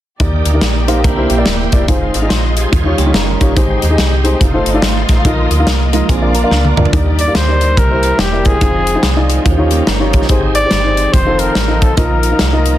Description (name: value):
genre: uptempo gospel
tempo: 143 BPM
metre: 4/4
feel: swing 62% on 8ths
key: Eb major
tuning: A4 = 440 Hz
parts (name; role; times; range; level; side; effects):
- dark upright piano; accompaniment; 0.2-12.8 s; Ab2 to C6; -18 LUFS; left 2 dB; none
- bright tonewheel organ; sustained chords; 0.2-12.8 s; F3 to F5; -23 LUFS; right 2 dB; fast rotary speaker, overdrive, chorus vibrato
- warm studio string section; sustained chords; 0.2-12.8 s; Eb3 to D5; -24 LUFS; right 1 dB; none
- metallic FM bass; bass; 0.2-12.8 s; Eb1 to Eb2; -16 LUFS; equal; none
- modern studio drum kit; drums; 0.2-12.7 s; hi-hat, kick drum, snare drum, toms; -15 LUFS; equal; none
- clean electric guitar; second line; 0.9-6.9, 9.4-10.3 s; Ab3 to C5; -22 LUFS; right 9 dB; none
- breathy trumpet; melody; 7.2-12.8 s; G4 to D5; -16 LUFS; left 1 dB; none
room: light reverb, studio reverb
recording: dense, heavily limited modern master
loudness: -10 LUFS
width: side -13 dB against mid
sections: 0.2-6.9 A section; 6.9-12.8 B section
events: drum fill 6.5-6.9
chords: 0.2 Ebmaj7; 1.0 C7; 1.9 Fm7; 2.7 Eb9; 3.6 Abmaj7; 4.4 F7; 5.2 Bbsus4; 6.1 Bb; 6.9 Ebmaj7; 7.8 C7; 8.6 Fm7; 9.5 Eb9; 10.3 Abmaj7; 11.1 F7; 12.0 Bbsus4